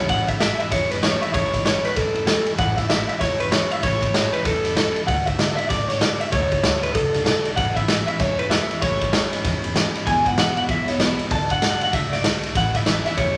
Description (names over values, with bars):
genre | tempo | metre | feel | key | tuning
rockabilly | 192 BPM | 4/4 | swing 62% on 8ths | A major | A4 = 440 Hz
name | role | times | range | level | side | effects
electric guitar through a small old amp | melody | 0.0-13.4 s | A4 to A5 | -25 LUFS | equal | none
picked steel-string acoustic guitar | accompaniment | 0.0-13.4 s | E2 to F#4 | -31 LUFS | equal | none
upright bass | bass | 0.0-13.4 s | E1 to D2 | -33 LUFS | equal | none
raw garage drum kit | drums | 0.1-13.3 s | kick drum, ride cymbal, snare drum | -24 LUFS | equal | none
room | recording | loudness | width
moderate large studio reverb, RT60 1.1 s | none | -21 LUFS | mono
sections
0.1-13.4 A section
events
none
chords
0.1 A; 5.1 D; 7.6 A; 10.1 E; 11.3 D; 12.6 A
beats
| 0.09 0.41 0.72 1.03 | 1.34 1.65 1.96 2.27 | 2.59 2.90 3.21 3.52 | 3.83 4.14 4.46 4.77 | 5.08 5.39 5.70 6.02 | 6.33 6.64 6.95 7.26 | 7.58 7.89 8.20 8.51 | 8.82 9.13 9.44 9.76 | 10.07 10.38 10.69 11.00 | 11.31 11.62 11.93 12.24 | 12.56 12.87 13.18